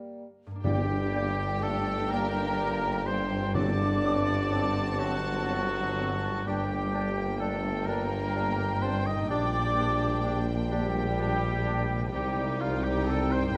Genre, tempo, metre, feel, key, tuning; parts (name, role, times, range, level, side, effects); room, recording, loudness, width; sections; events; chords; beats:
classical, slow romantic movement for symphony orchestra; 42 BPM (dotted quarters); 6/8; rubato; G minor; A4 = 441 Hz
mellow clarinet; second line; 0.0-13.6 s; Bb3 to Eb4; -43 LUFS; equal
mellow bassoon; accompaniment; 0.0-13.6 s; F#3 to G3; -42 LUFS; equal
warm French horn section; sustained chords; 0.0-13.6 s; F3 to Eb4; -39 LUFS; equal
concert harp; arpeggios; 0.0-13.6 s; G2 to Bb4; -44 LUFS; equal
rich studio violin section; melody; 0.6-13.6 s; G5 to A5; -42 LUFS; equal
concert flute; second line; 0.6-13.6 s; F5 to Eb6; -40 LUFS; equal
rich studio violin section; second line; 0.6-13.6 s; D4 to G4; -48 LUFS; equal
warm oboe; second line; 0.6-13.6 s; F4 to Eb5; -37 LUFS; equal
warm studio viola section; accompaniment; 0.6-13.6 s; G3 to D4; -42 LUFS; equal
mellow trumpet; stabs; 0.6-13.6 s; F4 to Eb5; -40 LUFS; equal
dark studio cello section; bass; 0.6-13.5 s; G2 to C3; -37 LUFS; equal
rich studio double bass section; bass; 0.6-13.6 s; G1 to C2; -38 LUFS; equal
warm tuba; bass; 0.6-13.6 s; G1 to C2; -37 LUFS; equal
timpani; percussion; 0.6-5.0 s; G2; -35 LUFS; equal
moderate scoring stage reverb, RT60 1.9 s; -28 LUFS; mono
0.6-13.6 A section
0.0 Gm; 3.5 D7/G; 6.5 Gm; 9.3 Gm/Bb; 12.1 Cm
| 0.64 2.10 | 3.54 5.00 | 6.46 7.87 | 9.29 10.71 | 12.13 13.54